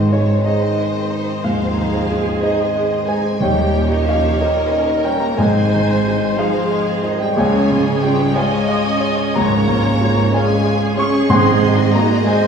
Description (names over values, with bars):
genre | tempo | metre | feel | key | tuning
classical, romantic movement for piano and orchestra | 61 BPM (dotted quarters) | 12/8 | rubato | Ab major | A4 = 440 Hz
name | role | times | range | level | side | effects
rich studio violin section | melody | 0.0-12.5 s | Db5 to Db6 | -29 LUFS | left 3 dB | none
warm grand piano | melody | 0.0-12.5 s | Db2 to Db6 | -18 LUFS | equal | none
rich studio violin section | second line | 0.0-12.5 s | G3 to Eb5 | -25 LUFS | left 2 dB | none
dark French horn section | sustained chords | 0.0-12.5 s | Db3 to Db4 | -22 LUFS | equal | none
rich studio double bass section | bass | 0.0-12.1 s | Ab1 to Eb2 | -24 LUFS | right 3 dB | none
warm studio cello section | bass | 0.0-12.1 s | Eb2 to Db3 | -23 LUFS | right 3 dB | none
timpani | percussion | 0.0-12.2 s | Ab2 to Eb3 | -26 LUFS | equal | none
rich studio viola section | accompaniment | 1.4-12.5 s | G4 to Eb5 | -23 LUFS | right 3 dB | none
room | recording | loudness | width
wet recital hall reverb, RT60 1.3 s | recorded in a church or concert hall, small room ambience | -14 LUFS | side -6 dB against mid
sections
0.0-12.5 A section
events
none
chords
0.0 Ab; 3.4 Eb7; 5.4 Ab; 7.4 Db; 11.3 Ab7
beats
0.44 1.44 2.43 | 3.40 4.40 5.38 6.38 | 7.36 8.36 9.36 10.33 | 11.29 12.25